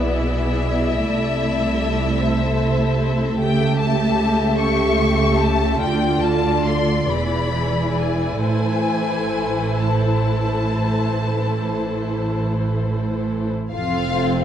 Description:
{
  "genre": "classical, slow romantic movement for string orchestra",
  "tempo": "44-53 BPM (dotted quarters)",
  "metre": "12/8",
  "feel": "rubato",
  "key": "A minor",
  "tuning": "A4 = 440 Hz",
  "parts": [
    { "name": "rich studio violin section", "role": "melody", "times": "0.0-14.4 s", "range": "E5 to C#6", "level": "-25 LUFS", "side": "left 5 dB", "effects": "none" },
    { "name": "warm studio violin section", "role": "second line", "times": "0.0-14.4 s", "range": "F4 to E5", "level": "-26 LUFS", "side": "left 3 dB", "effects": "none" },
    { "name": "rich studio viola section", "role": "accompaniment", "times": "0.0-14.4 s", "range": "E3 to A4", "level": "-23 LUFS", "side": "right 1 dB", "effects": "none" },
    { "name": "warm studio cello section", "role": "bass", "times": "0.0-14.4 s", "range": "E2 to D3", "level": "-26 LUFS", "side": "right 3 dB", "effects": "none" },
    { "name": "warm studio double bass section", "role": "bass", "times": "0.0-14.4 s", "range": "E1 to D2", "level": "-23 LUFS", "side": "right 2 dB", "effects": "none" }
  ],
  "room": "moderate scoring stage reverb, RT60 1.7 s",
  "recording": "dark, warm production",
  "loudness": "-17 LUFS",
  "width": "side -9 dB against mid",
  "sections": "0.0-13.7 A section",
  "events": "none",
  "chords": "0.0 E7/B; 1.0 Am/C; 3.4 A7/C#; 5.8 Dm; 7.1 E7; 8.4 Am; 13.7 F",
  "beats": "1.04 2.23 | 3.39 4.59 5.82 7.10 | 8.42 9.78 11.10 12.42 | 13.73"
}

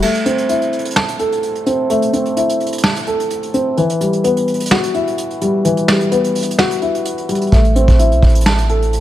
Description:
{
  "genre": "hip hop, trap",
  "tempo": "128 BPM",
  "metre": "4/4",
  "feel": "half-time",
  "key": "unclear",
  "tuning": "A4 = 440 Hz",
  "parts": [
    { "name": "dark concert grand piano", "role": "accompaniment", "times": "0.0-9.0 s", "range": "E3 to A5", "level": "-15 LUFS", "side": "left 1 dB", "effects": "low-pass filter" },
    { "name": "vintage brush drum kit", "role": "drums", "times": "0.0-9.0 s", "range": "crash cymbal, hi-hat, kick drum, snare drum", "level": "-18 LUFS", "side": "right 1 dB", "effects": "none" },
    { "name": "clean 808-style bass", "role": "bass", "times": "7.5-9.0 s", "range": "A1 to B1", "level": "-13 LUFS", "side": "equal", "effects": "none" }
  ],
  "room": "light reverb, small room ambience",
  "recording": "none",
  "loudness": "-13 LUFS",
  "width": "side -13 dB against mid",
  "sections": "0.0-9.0 A section",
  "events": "break 0.0-7.5",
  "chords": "0.0 Am; 3.8 Emadd9; 7.5 Am",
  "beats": "| 0.02 0.49 0.96 1.43 | 1.90 2.37 2.84 3.30 | 3.77 4.24 4.71 5.18 | 5.65 6.12 6.59 7.05 | 7.52 7.99 8.46 8.93"
}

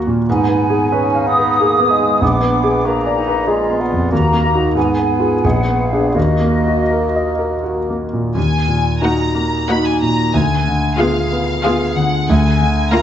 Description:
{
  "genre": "classical, romantic movement for piano and orchestra",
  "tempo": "80-96 BPM",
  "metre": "3/4",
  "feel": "rubato",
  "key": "Eb minor",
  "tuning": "A4 = 440 Hz",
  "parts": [
    { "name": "clear concert grand piano", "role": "melody", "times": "0.0-13.0 s", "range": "Bb1 to Gb5", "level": "-16 LUFS", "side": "equal", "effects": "none" },
    { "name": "clear clarinet", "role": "second line", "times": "0.0-8.0 s", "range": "D4 to Ab4", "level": "-25 LUFS", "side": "equal", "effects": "none" },
    { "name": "warm bassoon", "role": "accompaniment", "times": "0.0-8.0 s", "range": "Ab3 to Db4", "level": "-21 LUFS", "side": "right 2 dB", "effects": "none" },
    { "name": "large flute ensemble", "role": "second line", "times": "0.3-7.6 s", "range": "Eb5 to Eb6", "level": "-19 LUFS", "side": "equal", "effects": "none" },
    { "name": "rich studio violin section", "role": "melody", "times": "8.4-13.0 s", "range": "F5 to Cb6", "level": "-21 LUFS", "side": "left 2 dB", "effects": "none" },
    { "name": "dark studio cello section", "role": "bass", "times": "8.4-12.8 s", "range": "D2 to Eb2", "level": "-22 LUFS", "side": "right 4 dB", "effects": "none" },
    { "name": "rich studio violin section", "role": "second line", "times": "9.0-13.0 s", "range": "Ab4 to Gb5", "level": "-24 LUFS", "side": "left 2 dB", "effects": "none" },
    { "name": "rich studio viola section", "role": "accompaniment", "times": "9.0-13.0 s", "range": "Bb3 to F4", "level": "-21 LUFS", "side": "right 1 dB", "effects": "none" }
  ],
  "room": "moderate recital hall reverb, RT60 1.4 s",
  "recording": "nothing above 7.9 kHz",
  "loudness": "-13 LUFS",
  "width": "side -10 dB against mid",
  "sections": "0.0-8.4 A section; 8.4-13.0 A section",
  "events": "none",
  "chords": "0.3 Fdim/Ab; 2.2 Bb7b9; 4.1 Ebm; 4.8 Fdim/Ab; 6.2 Ebm; 10.3 Ddim7; 12.3 Bb7/D",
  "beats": "| 0.27 0.92 1.59 | 2.21 2.85 3.48 | 4.11 4.76 5.44 | 6.16 6.91 7.65 | 8.36 9.03 9.68 | 10.34 10.99 11.63 | 12.29 12.92"
}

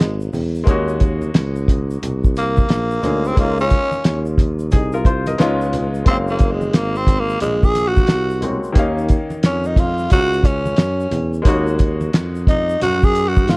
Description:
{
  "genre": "hip hop, jazz-hop",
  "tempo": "89 BPM",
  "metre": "4/4",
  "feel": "swing 62% on 16ths",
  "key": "unclear",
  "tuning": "A4 = 439 Hz",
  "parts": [
    { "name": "growling tenor saxophone", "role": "melody", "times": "0.0-13.6 s", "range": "Ab3 to Ab4", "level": "-19 LUFS", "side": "equal", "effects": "none" },
    { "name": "clear grand piano", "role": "accompaniment", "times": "0.0-13.6 s", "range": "Db3 to F5", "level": "-24 LUFS", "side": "left 2 dB", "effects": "none" },
    { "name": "mellow tuba", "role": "bass", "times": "0.0-13.6 s", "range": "Gb1 to Ab2", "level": "-21 LUFS", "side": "equal", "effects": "none" },
    { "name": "cloth-damped thuddy drum kit", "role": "drums", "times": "0.0-13.6 s", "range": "hi-hat, kick drum, snare drum", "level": "-15 LUFS", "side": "equal", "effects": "none" },
    { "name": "tube shaker and congas", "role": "percussion", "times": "0.0-13.6 s", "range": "none", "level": "-31 LUFS", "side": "right 1 dB", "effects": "none" }
  ],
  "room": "little or no reverb",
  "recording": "worn, warbling old tape, cassette tape, warbly pitch drift",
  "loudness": "-15 LUFS",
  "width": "side -26 dB against mid",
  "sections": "0.0-13.6 A section",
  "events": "tenor saxophone solo 0.0-13.6",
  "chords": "0.0 Ebm9; 0.7 Ab7sus4; 3.4 Db69; 5.4 Db9; 6.1 Gbmaj9#11; 8.8 Eb7sus2; 11.5 Ab7sus4/Eb",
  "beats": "0.00 | 0.67 1.34 2.02 2.69 | 3.37 4.04 4.71 5.39 | 6.06 6.74 7.41 8.09 | 8.76 9.43 10.11 10.78 | 11.46 12.13 12.80 13.48"
}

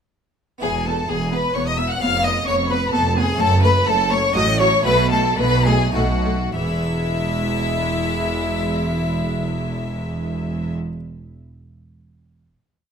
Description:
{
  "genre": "classical, baroque-style concerto movement with solo episodes",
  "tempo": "97-130 BPM",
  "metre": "3/4",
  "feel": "straight",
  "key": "E major",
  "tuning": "A4 = 441 Hz",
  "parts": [
    { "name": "rich chamber violin section", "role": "melody", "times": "0.6-10.7 s", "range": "E5 to F#6", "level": "-25 LUFS", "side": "left 4 dB", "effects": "none" },
    { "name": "rich violin", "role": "melody", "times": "0.6-10.7 s", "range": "F#4 to F#5", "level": "-25 LUFS", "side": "left 2 dB", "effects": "none" },
    { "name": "warm symphonic violin section", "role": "second line", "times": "0.6-10.7 s", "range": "E4 to F#5", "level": "-25 LUFS", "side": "left 1 dB", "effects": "none" },
    { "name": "harpsichord", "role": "accompaniment", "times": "0.6-11.0 s", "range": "E2 to E5", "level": "-31 LUFS", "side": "equal", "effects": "none" },
    { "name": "warm studio viola section", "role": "accompaniment", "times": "0.6-10.7 s", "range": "F#3 to B3", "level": "-28 LUFS", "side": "equal", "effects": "none" },
    { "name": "rich chamber double bass section", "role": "bass", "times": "0.6-10.7 s", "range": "E1 to B1", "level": "-24 LUFS", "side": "right 2 dB", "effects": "none" },
    { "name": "warm symphonic cello section", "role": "bass", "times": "0.6-10.7 s", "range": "E2 to B2", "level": "-24 LUFS", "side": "right 2 dB", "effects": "none" }
  ],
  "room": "moderate recital hall reverb, RT60 1.7 s",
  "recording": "close, detailed microphones",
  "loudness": "-17 LUFS",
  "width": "side -7 dB against mid",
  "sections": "0.6-6.5 ritornello; 6.5-10.2 final chord",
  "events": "slowing down 2.7-6.5",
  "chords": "0.6 E; 2.0 C#7/E#; 3.4 F#m; 4.3 F#m/A; 4.9 B7sus4; 5.9 B7; 6.5 E",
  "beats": "| 0.62 1.08 1.55 | 2.01 2.47 2.93 | 3.39 3.87 4.35 | 4.85 5.38 5.94 | 6.54 7.16 7.78 | 8.39 9.01 9.62"
}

